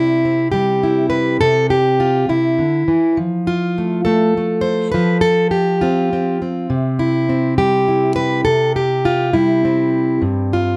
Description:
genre	folk, solo fingerstyle acoustic guitar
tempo	68 BPM (dotted quarters)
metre	6/8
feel	straight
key	C major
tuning	A4 = 440 Hz
part	fingerpicked plugged-in steel-string acoustic guitar	solo	0.0-10.8 s	G2 to C5	-16 LUFS	equal	none
room	light reverb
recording	none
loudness	-16 LUFS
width	mono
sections	0.0-10.8 A section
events	none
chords	0.0 C; 3.2 F; 6.7 C; 10.2 Gsus4

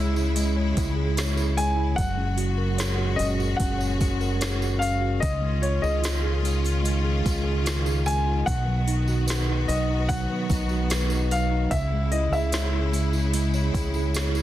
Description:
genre	pop ballad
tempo	74 BPM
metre	4/4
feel	straight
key	unclear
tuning	A4 = 440 Hz
part	clear baby grand piano	melody	0.0-13.1 s	C#5 to G#5	-30 LUFS	left 2 dB	tape echo
part	tine electric piano	accompaniment	0.0-14.4 s	B2 to C#5	-28 LUFS	right 1 dB	medium stereo tremolo
part	bright studio string section	sustained chords	0.0-14.4 s	A#2 to F#4	-33 LUFS	left 1 dB	none
part	deep dub fingered electric bass	bass	0.0-14.4 s	F#1 to C#2	-25 LUFS	equal	none
part	downlifter	sound effects	0.2-2.0 s	none	barely audible	none	none
part	tambourine	percussion	0.2-14.4 s	none	-39 LUFS	right 4 dB	none
part	smooth R&B drum kit	drums	0.4-14.3 s	hi-hat, kick drum, snare drum	-30 LUFS	equal	none
room	light reverb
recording	dense, heavily limited modern master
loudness	-22 LUFS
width	side -13 dB against mid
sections	0.0-14.4 A section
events	none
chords	0.0 C#m; 2.0 F#add9; 5.2 C#add9; 8.5 B; 11.7 C#m

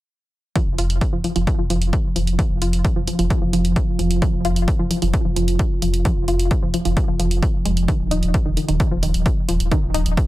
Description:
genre	driving peak-time techno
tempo	131 BPM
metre	4/4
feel	straight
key	unclear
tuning	A4 = 440 Hz
part	analog pluck	riff	0.6-10.0 s	Eb3 to F4	-25 LUFS	equal	chorus, tube saturation, sidechain pumping, analog delay
part	analog drone	drone	1.8-10.3 s	F3	-26 LUFS	right 1 dB	chorus, sidechain pumping
part	electronic hi-hat	drums	0.6-10.3 s	none	-30 LUFS	right 2 dB	sidechain pumping on hats
part	electronic kick drum	drums	0.6-10.3 s	none	-20 LUFS	equal	none
part	saturated sub bass	bass	0.7-10.2 s	Eb1 to F1	-21 LUFS	equal	sidechain pumping, low-pass filter
room	little or no reverb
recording	echo-heavy mix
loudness	-17 LUFS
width	side -16 dB against mid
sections	0.6-10.3 A section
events	filter sweep on synth arpeggio sound 0.6-10.3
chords	0.6 N.C.; 7.9 Ebsus2

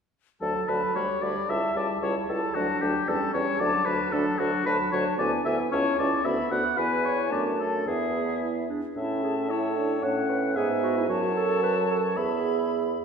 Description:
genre	quick classical-period movement for wind quintet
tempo	113 BPM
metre	2/4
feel	straight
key	D major, A major from 4.7 s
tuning	A4 = 441 Hz
part	silver concert flute	melody	0.4-13.0 s	E5 to B5	-33 LUFS	left 6 dB	none
part	warm oboe	second line	0.4-13.0 s	F#4 to F#5	-28 LUFS	left 2 dB	none
part	clear French horn	accompaniment	0.4-13.0 s	F#3 to E4	-32 LUFS	equal	none
part	warm clarinet	accompaniment	0.4-13.0 s	C#4 to C#5	-31 LUFS	right 4 dB	none
part	mellow bassoon	bass	0.4-13.0 s	C#2 to A2	-29 LUFS	right 2 dB	none
room	wet scoring stage reverb, RT60 1.8 s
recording	heard from further back in the room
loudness	-24 LUFS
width	side -6 dB against mid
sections	0.4-9.0 A section; 9.0-13.0 B section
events	none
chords	0.4 D; 1.0 G/D; 1.5 A7/C#; 2.6 D; 3.1 A7/E; 3.6 D; 5.2 E7/D; 5.7 A/C#; 6.2 Bm/D; 6.8 E; 7.3 D/F#; 7.9 E; 9.0 A; 10.0 B5/A; 10.6 E/G#; 11.1 F#m; 12.2 E

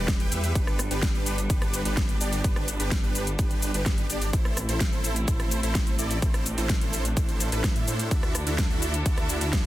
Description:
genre	EDM, festival progressive house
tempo	127 BPM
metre	4/4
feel	straight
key	unclear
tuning	A4 = 445 Hz
part	rich studio string section	sustained chords	0.0-9.7 s	D3 to A4	-34 LUFS	right 1 dB	sidechain pumping
part	supersaw chords	riff	0.0-9.7 s	D4 to G5	-32 LUFS	right 1 dB	analog chorus, sidechain pumping, tape echo
part	detuned saw bass	bass	0.0-9.7 s	E1 to A2	-30 LUFS	equal	tube saturation, sidechain pumping
part	big-room dance drum kit	drums	0.1-9.6 s	hi-hat, ride cymbal, rim click, shaker, snare drum	-31 LUFS	equal	overdrive
part	electronic kick drum	drums	0.1-9.6 s	none	-26 LUFS	equal	overdrive
room	little or no reverb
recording	dense, heavily limited modern master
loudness	-23 LUFS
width	side -15 dB against mid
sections	0.0-9.7 A section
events	none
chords	0.0 Em; 0.6 G; 4.3 Am; 8.1 Dadd9

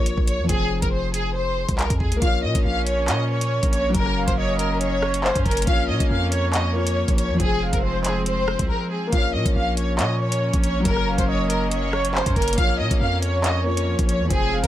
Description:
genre	hip hop, drill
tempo	139 BPM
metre	4/4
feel	half-time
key	Bb minor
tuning	A4 = 443 Hz
part	warm studio violin section	melody	0.0-14.7 s	Ab4 to F5	-25 LUFS	left 1 dB	low-pass filter, digital delay
part	felt-muted upright piano	accompaniment	0.0-14.7 s	F3 to Db5	-28 LUFS	left 2 dB	low-pass filter
part	long sustained 808-style bass	bass	0.0-14.7 s	F1 to Bb2	-25 LUFS	equal	none
part	drill drum kit	drums	0.1-14.7 s	handclaps, hi-hat, kick drum, rim click	-23 LUFS	equal	none
part	warm studio string section	sustained chords	2.2-14.7 s	F3 to Db4	-29 LUFS	equal	none
part	breathy flute-like synth lead	second line	2.9-14.7 s	Bb4 to F5	-30 LUFS	right 4 dB	chorus, digital delay
room	little or no reverb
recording	none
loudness	-19 LUFS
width	side -13 dB against mid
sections	0.0-2.2 A section; 2.2-14.7 B section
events	break 8.7-9.1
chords	0.5 Fm; 2.2 Bbm; 3.9 Gb; 5.7 Bbm; 7.4 Fm; 9.1 Bbm; 10.9 Gb; 12.6 Bbm

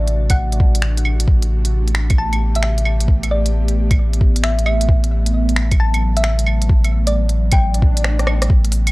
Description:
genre	future garage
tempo	133 BPM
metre	4/4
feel	swing 67% on 16ths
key	A dorian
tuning	A4 = 442 Hz
part	thumb-piano-like synth pluck	melody	0.0-8.0 s	D5 to A5	-25 LUFS	equal	chorus, phaser, vintage 12-bit sampler grit, analog delay
part	ethereal airy pad	sustained chords	0.0-8.9 s	C3 to G4	-26 LUFS	right 1 dB	ensemble chorus, built-in reverb, phaser, sidechain pumping
part	warm sub bass	bass	0.0-8.9 s	A1	-17 LUFS	equal	sidechain pumping
part	organic electronic drum kit	drums	0.1-8.9 s	claves, finger snaps, hi-hat, rim click	-23 LUFS	right 1 dB	none
part	electronic kick drum	drums	0.3-8.6 s	none	-14 LUFS	equal	none
part	swell	sound effects	7.7-8.5 s	none	-29 LUFS	left 1 dB	none
room	digital ambience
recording	dry, gritty hardware recording, cassette tape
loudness	-14 LUFS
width	side -21 dB against mid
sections	0.0-8.5 A section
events	swell 7.7-8.5; drum fill 8.0-8.5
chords	0.0 D7/A; 1.3 Am9

